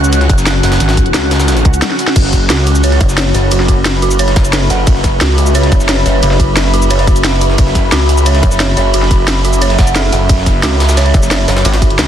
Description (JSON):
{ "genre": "dark technical drum and bass", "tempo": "177 BPM", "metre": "4/4", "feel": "straight", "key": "F# minor", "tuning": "A4 = 439 Hz", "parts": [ { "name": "deep dark ambient pad", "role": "sustained chords", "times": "0.0-12.1 s", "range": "C#4 to E5", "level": "-20 LUFS", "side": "left 2 dB", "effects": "chorus, built-in reverb, sidechain pumping" }, { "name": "snarling distorted saw bass", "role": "bass", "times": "0.0-12.1 s", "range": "F#1 to C#2", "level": "-12 LUFS", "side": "equal", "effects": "overdrive" }, { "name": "drum and bass drum kit", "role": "drums", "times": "0.0-12.1 s", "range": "cabasa, crash cymbal, hi-hat, ride cymbal, snare drum, toms", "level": "-17 LUFS", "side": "equal", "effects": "none" }, { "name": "airy breathy pad", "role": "texture", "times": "0.0-12.1 s", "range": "C#4 to F#6", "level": "-19 LUFS", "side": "equal", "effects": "chorus, sidechain pumping" }, { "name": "jungle sampler-style drum kit", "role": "drums", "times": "0.1-12.1 s", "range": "hi-hat, snare drum", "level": "-22 LUFS", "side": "equal", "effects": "overdrive, high-pass filter on snare, high-pass filter on hats, high-pass filter on room" }, { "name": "pulsing pluck wobble bass", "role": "bass", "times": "0.3-12.0 s", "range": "F#1 to C#2", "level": "-14 LUFS", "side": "equal", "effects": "chorus" }, { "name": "electronic kick drum", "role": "drums", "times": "0.3-11.9 s", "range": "none", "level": "-11 LUFS", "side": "equal", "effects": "none" }, { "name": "swell", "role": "sound effects", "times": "1.6-2.2 s", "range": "none", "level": "-27 LUFS", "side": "right 1 dB", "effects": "none" }, { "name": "dark detuned synth bell", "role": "arpeggios", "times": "2.5-11.9 s", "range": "F#4 to F#5", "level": "-19 LUFS", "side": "right 4 dB", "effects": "chorus, vintage 12-bit sampler grit, sidechain pumping, ping-pong delay" } ], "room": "light reverb", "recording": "dense, heavily limited modern master", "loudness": "-9 LUFS", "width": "side -10 dB against mid", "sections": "0.0-12.1 A section", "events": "swell 1.6-2.2; break 1.8-2.2; drum fill 1.8-2.2", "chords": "0.0 F#5", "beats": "0.12 0.46 | 0.80 1.14 1.48 1.82 | 2.16 2.50 2.84 3.18 | 3.52 3.85 4.19 4.53 | 4.87 5.21 5.55 5.89 | 6.23 6.57 6.91 7.24 | 7.58 7.92 8.26 8.60 | 8.94 9.28 9.62 9.96 | 10.29 10.63 10.97 11.31 | 11.65 11.99" }